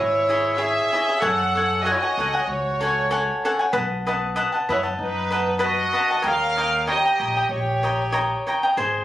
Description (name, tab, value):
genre	mexican folk, mariachi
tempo	95 BPM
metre	4/4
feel	swing 53% on 8ths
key	unclear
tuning	A4 = 441 Hz
part	warm studio violin section	melody	0.0-8.5 s	B4 to F#5	-24 LUFS	right 1 dB	none
part	mellow trumpet	second line	0.0-8.5 s	D#4 to A#4	-25 LUFS	right 1 dB	none
part	cavaquinho	accompaniment	0.0-9.0 s	E4 to A#5	-23 LUFS	left 1 dB	none
part	upright bass	bass	0.0-9.0 s	G#1 to F#2	-31 LUFS	equal	none
room	moderate studio reverb, RT60 0.5 s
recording	recorded on a phone in the room, club reverb, compression, lossy compression artefacts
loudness	-19 LUFS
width	side -14 dB against mid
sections	0.0-9.0 A section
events	none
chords	0.0 C#madd9; 1.2 F#madd9; 3.7 B7; 6.2 D#7